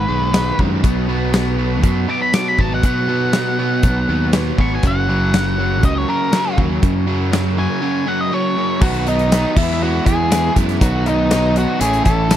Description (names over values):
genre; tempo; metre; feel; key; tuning
classic rock; 120 BPM; 4/4; straight; B major; A4 = 441 Hz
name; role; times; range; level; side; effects
octave-fuzz lead guitar; melody; 0.0-12.4 s; D#4 to D6; -21 LUFS; left 1 dB; distortion
overdriven electric guitar; riff; 0.0-12.4 s; F#2 to E4; -20 LUFS; right 1 dB; none
growling fingered electric bass; bass; 0.0-12.4 s; F#1 to B2; -20 LUFS; equal; overdrive
huge arena drum kit; drums; 0.3-12.4 s; crash cymbal, hi-hat, kick drum, snare drum; -19 LUFS; equal; none
bright tonewheel organ; sustained chords; 0.5-12.4 s; A3 to E#5; -32 LUFS; left 1 dB; none
room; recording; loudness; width
little or no reverb; dry, close 1970s-style studio recording; -14 LUFS; side -11 dB against mid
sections
0.0-8.8 A section; 8.8-12.4 B section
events
lead electric guitar solo 0.0-8.8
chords
0.0 G#m; 0.8 B; 4.8 F#; 8.8 B; 9.6 E; 10.8 B; 11.8 A